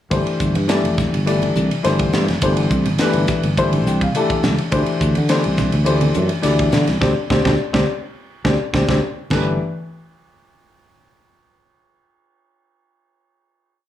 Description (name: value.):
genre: electric jazz fusion.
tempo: 104 BPM.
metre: 4/4.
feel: straight.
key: unclear.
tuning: A4 = 440 Hz.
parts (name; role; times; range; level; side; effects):
warm baby grand piano; accompaniment; 0.1-9.6 s; E3 to G5; -20 LUFS; left 3 dB; none.
sustaining fretless electric bass; bass; 0.1-9.6 s; F1 to D3; -19 LUFS; right 1 dB; none.
tight funk drum kit; drums; 0.1-9.5 s; crash cymbal, hi-hat, kick drum, ride cymbal, snare drum; -23 LUFS; right 1 dB; none.
congas; percussion; 0.6-9.6 s; none; -25 LUFS; right 3 dB; none.
room: moderate large studio reverb, RT60 0.9 s.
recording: studio reverb.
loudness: -15 LUFS.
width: side -11 dB against mid.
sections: 0.1-9.3 groove; 9.3-11.6 final chord.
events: grand piano fill 3.6-4.7; band accent 7.0-9.3; drum fill 8.7-9.3.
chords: 0.1 Gsus4; 4.7 D9sus4; 9.3 G.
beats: | 0.12 0.69 1.26 1.84 | 2.42 2.99 3.57 4.14 | 4.72 5.29 5.87 6.44 | 7.02 7.59 8.16 8.74 | 9.31.